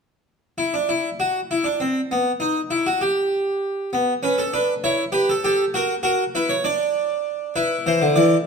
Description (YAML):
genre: classical, baroque-style 3-part fugue for harpsichord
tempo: 66 BPM (dotted quarters)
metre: 6/8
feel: straight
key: E minor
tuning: A4 = 441 Hz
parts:
  - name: harpsichord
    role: solo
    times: 0.6-8.5 s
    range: D3 to D5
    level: -19 LUFS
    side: equal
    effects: none
room: moderate recital hall reverb, RT60 1.4 s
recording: close, detailed microphones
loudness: -19 LUFS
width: side -5 dB against mid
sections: 0.3-8.5 A section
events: none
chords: 0.3 N.C.; 3.9 Bm; 4.8 C#m7b5/E; 5.7 F#7; 6.7 N.C.; 7.6 E5